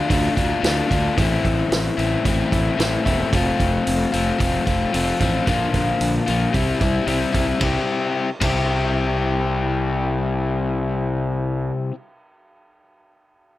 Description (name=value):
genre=indie rock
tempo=112 BPM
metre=4/4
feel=straight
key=C major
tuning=A4 = 440 Hz
part: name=overdriven electric guitar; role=riff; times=0.0-11.9 s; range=A2 to G4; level=-20 LUFS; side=left 4 dB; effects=none
part: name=fuzz fingered electric bass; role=bass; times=0.1-11.7 s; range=E1 to D2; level=-24 LUFS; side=right 1 dB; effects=overdrive
part: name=vintage drum kit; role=drums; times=0.1-8.6 s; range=hi-hat, kick drum, ride cymbal, snare drum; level=-25 LUFS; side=right 1 dB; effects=none
room=little or no reverb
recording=none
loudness=-18 LUFS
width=side -15 dB against mid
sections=0.0-7.6 A section; 7.6-11.9 B section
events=none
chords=0.0 Dm; 1.2 Am; 3.3 F; 5.5 Bb; 6.5 C